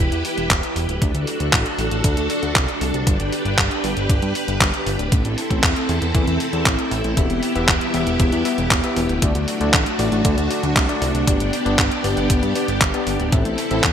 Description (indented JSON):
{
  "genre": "italo disco",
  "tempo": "117 BPM",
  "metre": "4/4",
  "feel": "straight",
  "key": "unclear",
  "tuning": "A4 = 440 Hz",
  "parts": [
    { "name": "string machine, full ensemble", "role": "sustained chords", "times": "0.0-13.9 s", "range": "A3 to B4", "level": "-22 LUFS", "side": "equal", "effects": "ensemble chorus" },
    { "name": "fat analog bass", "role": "bass", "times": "0.0-13.9 s", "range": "D1 to G2", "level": "-23 LUFS", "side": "equal", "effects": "none" },
    { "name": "detuned 8-bit digital drum machine", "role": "drums", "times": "0.1-13.9 s", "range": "handclaps, hi-hat", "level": "-22 LUFS", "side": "equal", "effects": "gated reverb" },
    { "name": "electronic kick drum", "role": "drums", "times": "0.5-13.9 s", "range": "none", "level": "-20 LUFS", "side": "equal", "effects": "none" },
    { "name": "overdriven tine electric piano", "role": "stabs", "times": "7.2-13.8 s", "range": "A3 to E5", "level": "-25 LUFS", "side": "left 4 dB", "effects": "ping-pong delay" }
  ],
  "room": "light reverb",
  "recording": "bright 1980s-style digital production",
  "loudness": "-17 LUFS",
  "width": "side -8 dB against mid",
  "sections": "0.0-13.9 A section",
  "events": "none",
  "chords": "0.0 Em; 1.0 D; 3.1 G; 5.1 Am; 7.2 Em; 9.2 D; 11.3 G; 13.3 Am"
}